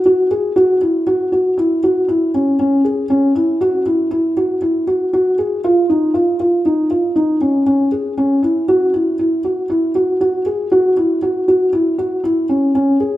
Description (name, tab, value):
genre	contemporary instrumental, contemporary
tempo	118 BPM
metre	5/4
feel	straight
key	C# minor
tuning	A4 = 440 Hz
part	felt-muted upright piano	solo	0.1-13.2 s	C#4 to G#4	-13 LUFS	equal	none
room	wet recital hall reverb, RT60 1.8 s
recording	none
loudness	-13 LUFS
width	side -14 dB against mid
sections	0.0-13.2 A section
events	none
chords	none